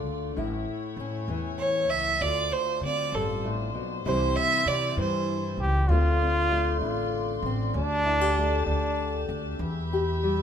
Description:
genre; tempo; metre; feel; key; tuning
acoustic folk duo or small band; 65 BPM (dotted quarters); 6/8; straight; D dorian; A4 = 437 Hz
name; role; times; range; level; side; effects
fingerpicked steel-string acoustic guitar; accompaniment; 0.0-10.4 s; D2 to G4; -31 LUFS; left 4 dB; none
warm chamber string section; sustained chords; 0.0-10.4 s; F3 to C6; -36 LUFS; equal; none
upright bass; bass; 0.0-10.4 s; A1 to D3; -29 LUFS; equal; none
rich fiddle; second line; 1.6-5.6 s; A4 to E5; -26 LUFS; right 3 dB; none
brilliant trombone; melody; 5.6-9.3 s; D4 to G4; -26 LUFS; equal; none
room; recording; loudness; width
moderate studio reverb, RT60 0.6 s; minimal, uncompressed stereo recording; -24 LUFS; side -8 dB against mid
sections
0.0-5.9 A section; 5.9-10.4 B section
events
fiddle solo 0.0-5.9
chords
0.4 A; 2.2 Dm7; 4.1 C; 5.9 Dm7; 7.8 Gsus2/D; 9.6 Em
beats
| 0.35 1.28 | 2.20 3.13 | 4.05 4.98 | 5.90 6.83 | 7.75 8.68 | 9.61

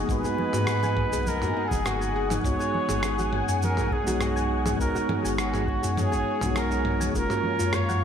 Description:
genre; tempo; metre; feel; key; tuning
sunset chillout; 102 BPM; 4/4; straight; unclear; A4 = 442 Hz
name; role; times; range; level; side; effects
mellow tine electric piano; accompaniment; 0.0-8.0 s; Ab3 to Gb4; -30 LUFS; equal; auto-pan, ping-pong delay, shimmer reverb
lush unison pad; sustained chords; 0.0-8.0 s; Gb3 to Bb5; -32 LUFS; left 1 dB; chorus, phaser, shimmer reverb
soft round pluck; arpeggios; 0.0-8.0 s; Eb4 to Ab5; -36 LUFS; left 3 dB; chorus, ping-pong delay, shimmer reverb
warm sub bass; bass; 0.0-8.0 s; Gb1 to Ab2; -29 LUFS; equal; none
clear flugelhorn; melody; 0.1-8.0 s; Gb4 to Db5; -30 LUFS; equal; ping-pong delay, shimmer reverb
dusty soul sampler-style drum kit; drums; 0.1-8.0 s; rim click, shaker, toms; -32 LUFS; equal; none
electronic kick drum; drums; 0.1-7.3 s; none; -32 LUFS; equal; overdrive
congas and bongos; percussion; 0.2-8.0 s; none; -37 LUFS; equal; none
room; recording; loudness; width
moderate plate reverb, RT60 1.9 s, digital ambience; dreamy mix soaked in reverb; -23 LUFS; side -8 dB against mid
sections
0.0-8.0 A section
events
none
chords
0.0 Abm7; 2.4 Db7sus4; 7.1 Gbmaj7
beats
| 0.09 0.68 1.27 1.85 | 2.44 3.03 3.62 4.21 | 4.79 5.38 5.97 6.56 | 7.15 7.74

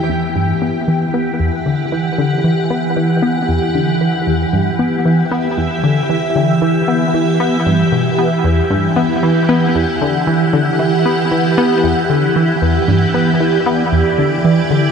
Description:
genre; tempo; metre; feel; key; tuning
ambient, sequencer-driven space music; 115 BPM; 4/4; straight; E minor; A4 = 440 Hz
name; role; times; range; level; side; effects
evolving wavetable pad; sustained chords; 0.0-14.9 s; E3 to G5; -15 LUFS; right 1 dB; ensemble chorus, built-in reverb, phaser
tight sequenced synth; riff; 0.1-14.9 s; E2 to B3; -16 LUFS; left 1 dB; chorus, tape echo
room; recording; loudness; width
wet huge ambient reverb, RT60 7.9 s; nothing above 10.7 kHz; -12 LUFS; side -6 dB against mid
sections
0.1-14.9 A section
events
none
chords
0.1 Emadd9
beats
| 0.10 0.62 1.14 1.66 | 2.18 2.71 3.23 3.75 | 4.27 4.79 5.31 5.83 | 6.36 6.88 7.40 7.92 | 8.44 8.97 9.49 10.01 | 10.53 11.05 11.57 12.10 | 12.62 13.14 13.66 14.18 | 14.71

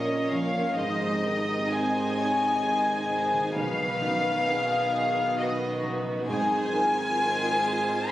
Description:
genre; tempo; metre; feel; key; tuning
cinematic, emotional film score for orchestra; 66 BPM; 3/4; rubato; unclear; A4 = 440 Hz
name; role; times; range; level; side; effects
rich violin; melody; 0.0-8.1 s; Eb5 to Ab5; -31 LUFS; left 2 dB; none
warm symphonic violin section; melody; 0.0-8.1 s; F#4 to Db5; -38 LUFS; left 1 dB; none
warm symphonic violin section; second line; 0.0-8.1 s; Eb5 to Ab5; -28 LUFS; equal; none
dark symphonic viola section; accompaniment; 0.0-8.1 s; Db4 to Eb5; -34 LUFS; right 2 dB; none
warm grand piano; accompaniment; 0.0-8.1 s; B1 to Eb5; -34 LUFS; right 1 dB; none
dark French horn section; sustained chords; 0.0-8.1 s; C3 to Db4; -36 LUFS; equal; none
concert harp; arpeggios; 0.0-8.1 s; Ab2 to C6; -35 LUFS; left 2 dB; none
rich symphonic double bass section; bass; 0.0-8.1 s; Ab1 to B1; -40 LUFS; right 3 dB; none
warm symphonic cello section; bass; 0.0-8.1 s; Ab2 to B2; -37 LUFS; right 2 dB; none
room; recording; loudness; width
moderate scoring stage reverb, RT60 1.5 s; recorded on a phone in the room, club reverb; -24 LUFS; side -14 dB against mid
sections
0.0-8.1 A section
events
none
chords
0.0 Bbm; 0.8 Ab; 3.6 B; 6.3 Ab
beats
| 0.77 1.72 2.64 | 3.56 4.47 5.38 | 6.29 7.20 8.11

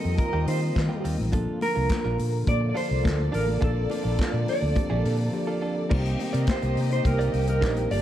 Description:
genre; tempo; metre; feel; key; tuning
disco; 105 BPM; 4/4; straight; C dorian; A4 = 440 Hz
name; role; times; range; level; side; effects
mellow electric guitar; melody; 0.0-8.0 s; A4 to D5; -29 LUFS; right 1 dB; tremolo
warm studio violin section; second line; 0.0-8.0 s; Bb3 to F5; -34 LUFS; right 1 dB; slapback echo
direct-recorded clean electric guitar; accompaniment; 0.0-7.9 s; C4 to D5; -36 LUFS; right 5 dB; none
mellow tine electric piano; accompaniment; 0.0-8.0 s; Eb3 to D5; -32 LUFS; left 2 dB; slow stereo tremolo
warm analog pad; sustained chords; 0.0-8.0 s; Bb2 to F4; -36 LUFS; right 2 dB; chorus
fingered electric bass; bass; 0.0-8.0 s; G1 to Eb3; -26 LUFS; equal; tube saturation
vintage drum kit; drums; 0.2-8.0 s; crash cymbal, handclaps, hi-hat, kick drum, snare drum; -29 LUFS; equal; none
congas; percussion; 0.2-7.8 s; none; -37 LUFS; left 4 dB; none
room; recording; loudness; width
light reverb, small room ambience; dark, warm production; -22 LUFS; side -12 dB against mid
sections
0.0-5.9 A section; 5.9-8.0 B section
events
break 5.3-5.9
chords
0.0 Eb69; 1.3 Bbmaj7; 5.9 Cm9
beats
0.18 0.76 | 1.33 1.90 2.48 3.05 | 3.62 4.19 4.76 5.33 | 5.91 6.48 7.05 7.62

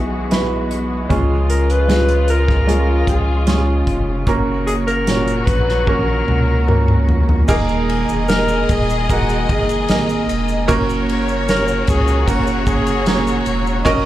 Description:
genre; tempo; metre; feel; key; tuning
pop ballad; 76 BPM; 4/4; straight; unclear; A4 = 439 Hz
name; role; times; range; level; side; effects
mellow alto saxophone; melody; 0.0-13.5 s; F#4 to B4; -22 LUFS; left 1 dB; slapback echo
warm concert grand piano; accompaniment; 0.0-14.1 s; A#2 to C#5; -20 LUFS; right 3 dB; none
muted symphonic string section; sustained chords; 0.0-14.1 s; A#2 to G#4; -25 LUFS; left 3 dB; none
saturated sub bass; bass; 0.0-14.1 s; D#1 to C#2; -19 LUFS; equal; none
unplugged drum kit; drums; 0.3-14.0 s; crash cymbal, hi-hat, kick drum, ride cymbal, snare drum, toms; -21 LUFS; equal; none
warm studio violin section; second line; 7.5-14.1 s; C#5 to D#5; -26 LUFS; left 2 dB; slapback echo
egg shaker; percussion; 7.5-14.0 s; none; -38 LUFS; left 1 dB; none
room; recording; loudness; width
light reverb; live gig heard through the venue's PA, club reverb; -14 LUFS; side -14 dB against mid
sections
0.0-7.5 A section; 7.5-14.1 B section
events
drum fill 5.9-7.5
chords
0.0 Eadd9; 1.1 C#; 4.3 F#; 7.5 D#sus4; 10.7 F#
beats
0.32 | 1.11 1.90 2.69 3.48 | 4.28 5.08 5.87 6.68 | 7.49 8.29 9.10 9.89 | 10.69 11.48 12.27 13.06 | 13.85

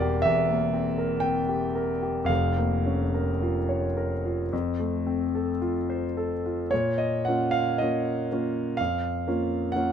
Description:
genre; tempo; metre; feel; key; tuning
classical, romantic nocturne for solo piano; 54-64 BPM; 4/4; rubato; Bb minor; A4 = 439 Hz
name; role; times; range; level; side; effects
warm concert grand piano; solo; 0.0-9.9 s; E1 to G5; -24 LUFS; equal; none
room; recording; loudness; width
light reverb; none; -24 LUFS; side -8 dB against mid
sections
0.0-6.7 A section; 6.7-9.9 B section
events
none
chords
0.0 C7/E; 2.3 Bbm/F; 4.5 F; 6.7 Bbm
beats
0.25 1.23 | 2.30 3.41 4.52 5.61 | 6.71 7.80 8.79 9.75

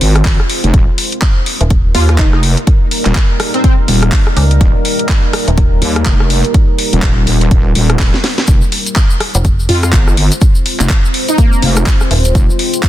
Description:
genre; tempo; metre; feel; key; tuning
bass house; 124 BPM; 4/4; swing 59% on 16ths; unclear; A4 = 439 Hz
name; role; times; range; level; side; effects
deep dark ambient pad; sustained chords; 0.0-12.9 s; G3 to C5; -20 LUFS; equal; chorus, built-in reverb, sidechain pumping
wobble bass; bass; 0.0-12.5 s; Eb1 to F2; -12 LUFS; equal; chorus, overdrive, sidechain pumping
garage drum kit; drums; 0.0-12.9 s; handclaps, hi-hat, rim click, snare drum; -18 LUFS; left 1 dB; none
electronic kick drum; drums; 0.3-12.9 s; none; -11 LUFS; equal; none
metallic FM bass; bass; 1.6-5.8, 9.3-12.3 s; Eb1 to Db2; -12 LUFS; equal; overdrive, sidechain pumping
plucky unison lead; melody; 1.9-3.7, 9.7-11.8 s; Bb3 to F4; -19 LUFS; equal; ensemble chorus, digital delay
tube shaker; percussion; 8.5-12.9 s; none; -24 LUFS; left 2 dB; none
room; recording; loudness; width
little or no reverb; dense, heavily limited modern master; -9 LUFS; side -13 dB against mid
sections
0.0-12.9 A section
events
drum fill 8.0-8.5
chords
0.0 Fm; 0.7 Eb; 8.5 Fm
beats
0.25 | 0.74 1.22 1.71 2.19 | 2.67 3.16 3.64 4.12 | 4.61 5.09 5.58 6.06 | 6.54 7.03 7.51 8.00 | 8.48 8.96 9.45 9.93 | 10.41 10.90 11.38 11.87 | 12.35 12.83

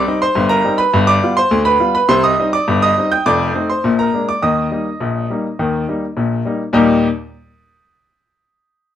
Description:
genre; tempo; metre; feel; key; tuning
ragtime piano; 104 BPM; 2/4; straight; Eb major; A4 = 439 Hz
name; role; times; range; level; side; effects
clear baby grand piano; solo; 0.0-7.1 s; F1 to G6; -13 LUFS; equal; none
room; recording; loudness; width
light reverb; none; -13 LUFS; side -10 dB against mid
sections
0.0-6.7 A section; 6.7-7.9 B section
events
none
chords
0.0 Cm; 0.9 G7; 2.1 Cm; 3.2 F7; 3.8 Bb7; 4.4 Eb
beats
0.36 | 0.94 1.51 | 2.09 2.66 | 3.24 3.82 | 4.40 4.99 | 5.57 6.16 | 6.74

